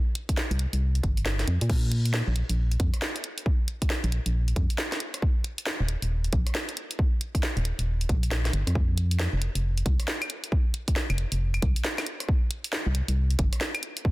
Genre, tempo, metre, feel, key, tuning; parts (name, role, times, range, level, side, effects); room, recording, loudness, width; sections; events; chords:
UK garage, two-step garage; 136 BPM; 4/4; swing 62% on 16ths; A4 = 440 Hz
house drum kit; drums; 0.2-14.0 s; claves, crash cymbal, hi-hat, rim click, snare drum; -31 LUFS; equal
electronic kick drum; drums; 0.3-14.1 s; -25 LUFS; equal
organ-like FM bass; bass; 0.5-13.5 s; Eb1 to Bb2; -25 LUFS; equal; sidechain pumping
little or no reverb; dense, heavily limited modern master; -24 LUFS; side -19 dB against mid
0.0-14.1 A section